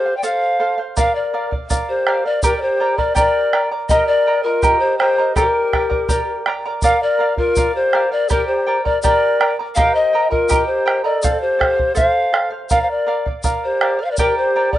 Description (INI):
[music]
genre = andean folk, Andean ensemble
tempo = 82 BPM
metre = 2/4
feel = straight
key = G minor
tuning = A4 = 441 Hz
[part]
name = polished pan flute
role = melody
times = 0.0-14.8 s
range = Bb4 to G5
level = -17 LUFS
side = left 2 dB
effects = none
[part]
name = mellow large quena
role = second line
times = 0.0-14.8 s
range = F4 to D5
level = -26 LUFS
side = right 4 dB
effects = none
[part]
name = charango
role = accompaniment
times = 0.0-14.8 s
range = G4 to Bb5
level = -21 LUFS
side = right 2 dB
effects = none
[part]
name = tube shaker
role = percussion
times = 0.2-14.3 s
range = none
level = -28 LUFS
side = left 2 dB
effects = none
[part]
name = bombo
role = percussion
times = 1.0-14.8 s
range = none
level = -20 LUFS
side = right 2 dB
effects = none
[sound]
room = small room ambience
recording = rough home demo mix, nothing above 10.3 kHz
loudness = -15 LUFS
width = side -13 dB against mid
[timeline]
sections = 0.0-6.8 A section; 6.8-14.8 A section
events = none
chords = 0.0 F; 1.0 Bb; 2.4 Gm; 3.9 Eb; 5.4 Gm; 6.8 Bb; 8.3 Gm; 9.8 Eb; 11.2 F; 12.7 Bb; 14.2 Gm